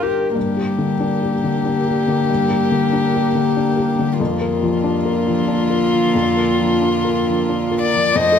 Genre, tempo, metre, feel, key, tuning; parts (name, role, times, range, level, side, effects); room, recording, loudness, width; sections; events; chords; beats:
neoclassical piano and strings; 93 BPM; 3/4; rubato; G minor; A4 = 440 Hz
warm violin; melody; 0.0-8.4 s; F4 to Eb5; -20 LUFS; left 3 dB
felt-muted upright piano; accompaniment; 0.0-8.4 s; F2 to Bb4; -21 LUFS; left 4 dB
warm viola; accompaniment; 0.0-8.4 s; Bb3 to C5; -21 LUFS; equal
deep dark ambient pad; sustained chords; 0.0-8.4 s; D4 to Bb4; -26 LUFS; right 2 dB; chorus, built-in reverb
rich cello; second line; 0.4-8.4 s; D3 to A3; -32 LUFS; right 8 dB
moderate recital hall reverb, RT60 1.4 s; faint mains hum; -15 LUFS; side -8 dB against mid
0.4-8.1 A section
0.4 Gm; 4.2 Bb/F
| 0.36 1.00 1.65 | 2.29 2.93 3.56 | 4.20 4.83 5.47 | 6.13 6.80 7.48 | 8.15